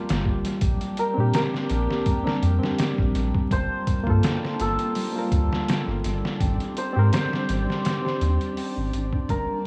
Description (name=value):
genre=trip hop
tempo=83 BPM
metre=4/4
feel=swing 54% on 16ths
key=unclear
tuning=A4 = 438 Hz
part: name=santur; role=melody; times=0.0-9.7 s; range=G4 to C5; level=-33 LUFS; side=equal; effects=tape echo
part: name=bright reed electric piano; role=accompaniment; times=0.0-9.3 s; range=Bb3 to C5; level=-33 LUFS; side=equal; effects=harmonic tremolo, tape echo
part: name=dark chamber string section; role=sustained chords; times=0.0-9.7 s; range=G3 to A5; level=-37 LUFS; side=equal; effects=none
part: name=concert harp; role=arpeggios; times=0.0-9.7 s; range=G3 to C4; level=-34 LUFS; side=equal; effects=analog delay
part: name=soft dub sub bass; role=bass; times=0.1-9.5 s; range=G1 to Bb2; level=-26 LUFS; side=equal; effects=none
part: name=trip hop sampler-style drum kit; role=drums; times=0.1-9.5 s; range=hi-hat, kick drum, snare drum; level=-29 LUFS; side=equal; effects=studio reverb, tape echo
part: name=flickering grainy texture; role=texture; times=4.6-9.7 s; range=D4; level=-40 LUFS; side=equal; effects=none
room=light reverb, small room ambience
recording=echo-heavy mix, vinyl crackle, studio ambience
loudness=-24 LUFS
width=mono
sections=0.0-9.7 A section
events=fade-out 7.4-9.7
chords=0.0 Gm9; 0.6 Bb6; 3.5 Gm9; 6.4 Abmaj9